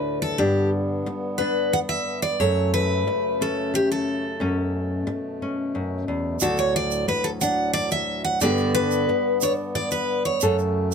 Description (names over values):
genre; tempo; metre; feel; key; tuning
acoustic folk duo or small band; 90 BPM; 3/4; straight; unclear; A4 = 440 Hz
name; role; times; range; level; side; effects
picked steel-string acoustic guitar; melody; 0.0-10.6 s; G4 to F#5; -24 LUFS; equal; none
nylon-string guitar; accompaniment; 0.0-10.9 s; D2 to A4; -25 LUFS; equal; none
pedal harmonium; sustained chords; 0.0-10.9 s; D2 to B3; -31 LUFS; left 1 dB; none
tube shaker; percussion; 6.4-10.9 s; none; -29 LUFS; right 8 dB; none
room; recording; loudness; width
little or no reverb; close, detailed microphones; -21 LUFS; side -6 dB against mid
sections
0.0-10.9 A section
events
steel-string acoustic guitar solo 0.0-10.9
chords
0.4 G; 2.4 F#m; 6.4 D; 8.4 G; 10.4 F#m